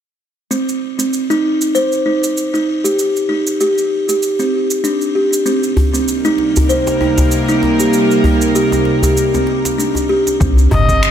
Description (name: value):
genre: organic downtempo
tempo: 97 BPM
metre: 4/4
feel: swing 56% on 16ths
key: C minor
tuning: A4 = 442 Hz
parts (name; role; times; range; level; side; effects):
- buzzing kalimba; arpeggios; 0.5-11.0 s; C4 to C5; -14 LUFS; equal; low-pass filter, ping-pong delay
- organic electronic drum kit; drums; 0.5-11.1 s; finger snaps, shaker, toms; -22 LUFS; right 2 dB; none
- bowed-like drone; sustained chords; 6.1-10.4 s; C3 to Bb4; -17 LUFS; right 1 dB; built-in reverb, sidechain pumping
- djembe; percussion; 5.8-10.9 s; none; -18 LUFS; equal; none
- round analog bass; bass; 10.4-11.1 s; G1 to C2; -13 LUFS; equal; none
- electronic kick drum; drums; 10.4-11.0 s; none; -17 LUFS; equal; none
- rich kamancheh; melody; 10.7-11.1 s; Eb5; -15 LUFS; left 2 dB; none
room: moderate lush hall reverb, RT60 2.6 s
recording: none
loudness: -12 LUFS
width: side -9 dB against mid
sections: 0.5-10.4 A section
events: none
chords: 0.5 Cm7; 10.4 Cm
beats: | 0.51 1.13 1.75 2.37 | 2.99 3.61 4.23 4.84 | 5.46 6.08 6.70 7.32 | 7.94 8.56 9.17 9.79 | 10.41 11.03